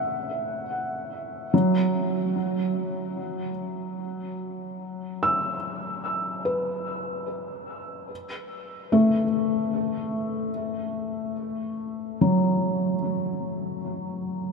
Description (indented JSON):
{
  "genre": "ambient",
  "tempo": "free time",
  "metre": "none",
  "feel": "none",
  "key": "unclear",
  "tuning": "A4 = 441 Hz",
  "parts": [
    { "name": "felt-muted upright piano", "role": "solo", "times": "0.0-14.5 s", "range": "F#3 to E6", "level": "-25 LUFS", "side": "equal", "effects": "diffuse ambient delay" }
  ],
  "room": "wet huge ambient reverb, RT60 7.8 s",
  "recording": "none",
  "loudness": "-24 LUFS",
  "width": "side -4 dB against mid",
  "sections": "0.0-14.5 A section",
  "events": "none",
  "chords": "0.0 A5; 1.5 Esus2; 8.1 F#m"
}